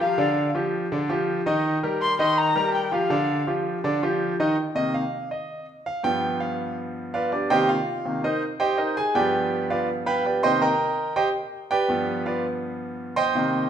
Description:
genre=latin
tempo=164 BPM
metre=4/4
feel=straight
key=C harmonic minor from 4.6 s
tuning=A4 = 440 Hz
part: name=dark erhu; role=melody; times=0.0-3.5 s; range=F5 to C6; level=-24 LUFS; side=left 3 dB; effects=none
part: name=bright concert grand piano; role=accompaniment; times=0.0-13.7 s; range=G2 to C6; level=-22 LUFS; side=right 1 dB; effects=none
room=wet large studio reverb, RT60 1.5 s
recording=minimal, uncompressed stereo recording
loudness=-22 LUFS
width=side -9 dB against mid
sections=0.0-4.6 A section; 4.6-13.7 B section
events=grand piano solo 4.6-13.7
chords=0.2 G5; 1.6 Eb69; 3.1 G5; 4.6 Cm7; 6.0 G7; 7.5 Cm7; 9.0 G7; 10.4 Cm7; 11.9 G7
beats=| 0.18 0.55 0.92 1.28 | 1.65 2.02 2.38 2.75 | 3.11 3.48 3.85 4.21 | 4.58 4.94 5.31 5.68 | 6.04 6.41 6.77 7.14 | 7.50 7.87 8.24 8.60 | 8.97 9.33 9.70 10.06 | 10.43 10.79 11.16 11.53 | 11.89 12.26 12.62 12.99 | 13.35

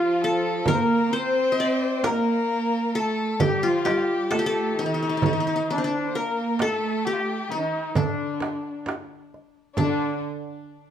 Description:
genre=Arabic maqam ensemble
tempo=132 BPM (eighths)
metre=10/8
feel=straight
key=D maqam bayati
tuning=A4 = 438 Hz
part: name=qanun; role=melody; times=0.0-10.2 s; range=C4 to E5-50c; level=-25 LUFS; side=left 2 dB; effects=none
part: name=dark violin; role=second line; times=0.0-10.2 s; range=D4 to C5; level=-28 LUFS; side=left 4 dB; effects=tape echo
part: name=rich symphonic cello section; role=second line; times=0.0-10.2 s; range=D3 to C4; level=-28 LUFS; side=right 3 dB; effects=none
part: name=darbuka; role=percussion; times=0.7-10.2 s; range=none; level=-27 LUFS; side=right 4 dB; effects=none
part: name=frame drum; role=percussion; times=0.7-10.2 s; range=none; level=-30 LUFS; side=right 2 dB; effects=none
room=moderate large studio reverb, RT60 0.9 s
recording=band playing live in one room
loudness=-22 LUFS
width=side -9 dB against mid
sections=0.0-9.8 A section; 9.8-10.9 B section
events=none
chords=none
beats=0.22 | 0.67 1.13 1.58 2.04 2.50 2.95 3.41 3.86 4.32 4.77 | 5.22 5.68 6.13 6.59 7.04 7.50 7.95 8.41 8.86 9.32 | 9.77

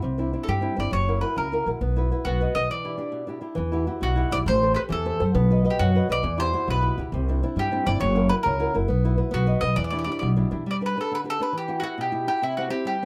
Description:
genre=italian folk, Italian serenade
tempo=136 BPM (dotted quarters)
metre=6/8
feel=straight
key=E minor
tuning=A4 = 440 Hz
part: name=flamenco guitar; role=accompaniment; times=0.0-13.1 s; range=B2 to D#5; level=-30 LUFS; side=equal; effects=none
part: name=upright bass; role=bass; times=0.0-10.6 s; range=F#1 to G2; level=-26 LUFS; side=equal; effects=none
part: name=mandolin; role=melody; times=0.4-13.1 s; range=E4 to D#5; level=-28 LUFS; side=equal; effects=none
room=light reverb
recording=close, detailed microphones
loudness=-24 LUFS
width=mono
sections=0.0-3.6 A section; 3.6-10.7 A section; 10.7-13.1 B section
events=break 2.7-3.6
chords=0.0 Cadd9; 0.9 F#7; 1.8 Bsus4; 2.2 B; 2.7 Em7; 3.6 Emadd9; 4.5 Am7; 5.4 B; 6.2 Emadd9; 7.1 Cadd9; 8.0 F#7; 8.9 Bsus4; 9.3 B; 9.8 Em7; 10.7 G; 11.6 Emadd9; 12.4 C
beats=| 0.03 0.48 | 0.92 1.36 | 1.81 2.25 | 2.69 3.14 | 3.58 4.03 | 4.47 4.91 | 5.35 5.79 | 6.23 6.68 | 7.13 7.57 | 8.02 8.46 | 8.89 9.33 | 9.77 10.22 | 10.66 11.11 | 11.55 11.99 | 12.43 12.87

